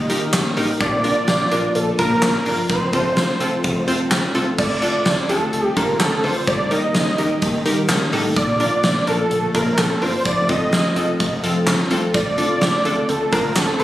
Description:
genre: synth-pop.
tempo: 127 BPM.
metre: 4/4.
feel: straight.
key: unclear.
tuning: A4 = 440 Hz.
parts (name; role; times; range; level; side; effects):
wide unison lead; melody; 0.0-13.8 s; A4 to Eb5; -21 LUFS; right 1 dB; ping-pong delay.
string machine, full ensemble; sustained chords; 0.0-13.8 s; C3 to G4; -26 LUFS; left 1 dB; ensemble chorus.
resonant blip pluck; arpeggios; 0.0-4.6, 12.1-13.8 s; Bb3 to A4; -31 LUFS; left 1 dB; none.
fat analog bass; bass; 0.0-13.8 s; F1 to Eb3; -26 LUFS; equal; none.
analog pluck; accompaniment; 0.1-13.8 s; C4 to C5; -24 LUFS; left 1 dB; chorus.
gated 80s drum kit; drums; 0.1-13.8 s; crash cymbal, handclaps, hi-hat, kick drum, snare drum; -21 LUFS; equal; none.
room: moderate plate reverb, RT60 1.2 s, studio reverb.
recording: recorded on a phone in the room.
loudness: -16 LUFS.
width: side -14 dB against mid.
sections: 0.0-4.6 A section; 4.6-13.8 A section.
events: none.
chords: 0.0 Eb; 0.8 Bb; 2.7 F; 4.6 Dm7; 6.5 Eb; 8.4 Bb; 10.3 F; 12.1 Dm7.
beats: 0.33 | 0.81 1.28 1.75 2.22 | 2.70 3.17 3.64 4.11 | 4.59 5.06 5.53 6.00 | 6.48 6.95 7.42 7.89 | 8.37 8.84 9.31 9.78 | 10.26 10.73 11.20 11.67 | 12.14 12.62 13.09 13.56.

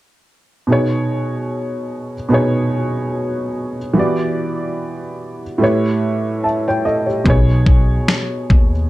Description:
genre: lo-fi hip hop.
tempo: 73 BPM.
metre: 4/4.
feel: swing 58% on 16ths.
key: B major.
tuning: A4 = 440 Hz.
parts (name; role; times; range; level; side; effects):
dark upright piano; accompaniment; 0.7-8.9 s; A2 to A5; -17 LUFS; right 1 dB; cassette tape.
upright bass; bass; 7.3-8.8 s; B1 to D#2; -17 LUFS; equal; none.
dusty soul sampler-style drum kit; drums; 7.3-8.7 s; kick drum, snare drum; -13 LUFS; equal; none.
room: moderate studio reverb, RT60 0.6 s.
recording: none.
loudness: -15 LUFS.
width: side -17 dB against mid.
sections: 0.7-7.3 A section; 7.3-8.9 B section.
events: hi-hats muted 7.3-8.9.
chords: 0.7 B69; 4.0 Em9; 5.6 A9; 7.3 B69.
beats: | 0.68 1.50 2.32 3.15 | 3.97 4.79 5.61 6.43 | 7.26 8.08.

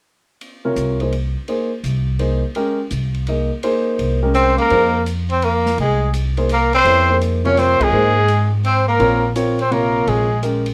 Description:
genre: modal jazz.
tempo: 168 BPM.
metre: 3/4.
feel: swing 66% on 8ths.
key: F minor.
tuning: A4 = 440 Hz.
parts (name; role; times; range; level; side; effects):
open jazz drum kit; drums; 0.4-10.7 s; hi-hat, kick drum, ride cymbal, snare drum; -35 LUFS; equal; none.
warm grand piano; accompaniment; 0.6-10.6 s; C3 to Eb5; -22 LUFS; equal; none.
upright bass; bass; 0.8-10.7 s; Bb1 to Ab2; -22 LUFS; equal; none.
clear tenor saxophone; second line; 4.3-10.4 s; Ab3 to Db4; -22 LUFS; equal; none.
warm trumpet; melody; 4.4-10.4 s; Ab4 to Db5; -20 LUFS; equal; none.
room: moderate small room reverb, RT60 0.5 s.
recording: none.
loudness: -17 LUFS.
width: mono.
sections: 0.4-4.7 A section; 4.7-10.7 B section.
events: band accent 7.7.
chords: 0.4 Fm11 (rootless); 4.7 Fm7; 9.0 Bbm9.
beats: | 0.41 0.77 1.12 | 1.48 1.84 2.20 | 2.56 2.92 3.27 | 3.63 3.99 4.35 | 4.71 5.06 5.42 | 5.78 6.14 6.50 | 6.85 7.21 7.57 | 7.93 8.28 8.64 | 9.00 9.36 9.71 | 10.07 10.43.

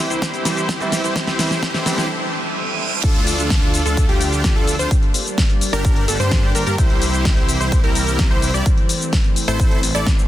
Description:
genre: EDM, festival progressive house.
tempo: 128 BPM.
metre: 4/4.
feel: straight.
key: D minor.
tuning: A4 = 435 Hz.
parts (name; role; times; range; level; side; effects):
bright concert grand piano; accompaniment; 0.0-2.0 s; E3 to E4; -27 LUFS; right 2 dB; sidechain pumping, tape echo.
lush unison pad; sustained chords; 0.0-10.3 s; E3 to C6; -28 LUFS; equal; chorus, sidechain pumping.
dense compressed supersaw; riff; 0.0-10.1 s; D4 to D5; -23 LUFS; equal; sidechain pumping, low-pass filter, tape echo.
detuned saw bass; bass; 0.0-10.3 s; G1 to G2; -24 LUFS; equal; sidechain pumping, high-pass filter.
riser, reverse cymbal and downlifter; sound effects; 0.3-6.8 s; none; -29 LUFS; right 4 dB; none.
big-room dance drum kit; drums; 0.1-10.3 s; cabasa, crash cymbal, hi-hat, snare drum; -23 LUFS; left 1 dB; soft clipping on snare.
electronic kick drum; drums; 0.2-10.2 s; none; -17 LUFS; equal; high-pass filter on kick.
plucky unison lead; arpeggios; 3.0-10.1 s; G4 to D5; -27 LUFS; equal; sidechain pumping, tape echo.
room: light reverb, digital ambience.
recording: dense, heavily limited modern master.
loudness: -15 LUFS.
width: side -13 dB against mid.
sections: 0.0-3.0 A section; 3.0-10.3 B section.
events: build-up 0.0-3.0; drum fill 0.0-2.1; break 2.1-3.0; reverse cymbal 2.1-3.0; drop 3.0-10.3.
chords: 0.0 C; 1.2 Am; 3.0 Dm; 4.9 Gm; 6.8 C; 8.7 Am.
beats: 0.22 0.69 | 1.16 1.63 2.10 2.56 | 3.03 3.50 3.97 4.44 | 4.91 5.38 5.85 6.32 | 6.78 7.25 7.72 8.19 | 8.66 9.13 9.60 10.06.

